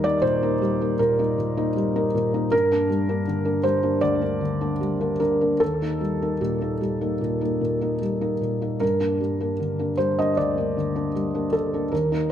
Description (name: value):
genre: neoclassical minimalist piano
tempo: 77 BPM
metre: 4/4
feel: uneven beats, rubato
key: G minor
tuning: A4 = 440 Hz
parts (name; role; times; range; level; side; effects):
- felt-muted upright piano; solo; 0.0-12.3 s; D2 to Eb5; -21 LUFS; equal; slapback echo
room: light reverb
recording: none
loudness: -21 LUFS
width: side -10 dB against mid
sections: 0.0-12.3 A section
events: none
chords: 0.0 Eb; 2.5 Gm; 5.6 Eb; 8.8 Gm